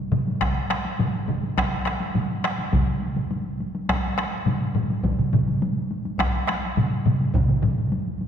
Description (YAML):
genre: japanese traditional, taiko drum ensemble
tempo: 104 BPM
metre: 4/4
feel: straight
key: none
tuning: none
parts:
  - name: solo taiko drums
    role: percussion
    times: 0.1-8.3 s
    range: none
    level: -28 LUFS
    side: left 1 dB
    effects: none
  - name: taiko ensemble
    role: percussion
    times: 0.1-7.8 s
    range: none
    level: -26 LUFS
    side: left 3 dB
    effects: none
  - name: taiko ensemble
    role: percussion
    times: 0.1-7.8 s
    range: none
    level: -26 LUFS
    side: right 4 dB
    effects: none
  - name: taiko ensemble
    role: percussion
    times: 0.4-7.5 s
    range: none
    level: -29 LUFS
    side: equal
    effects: none
room: wet concert hall reverb, RT60 2.3 s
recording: recorded in a church or concert hall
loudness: -21 LUFS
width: side -8 dB against mid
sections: 0.0-8.3 A section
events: none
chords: none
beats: 0.41 0.99 | 1.57 2.15 2.73 3.31 | 3.89 4.47 5.04 5.62 | 6.19 6.77 7.34 7.91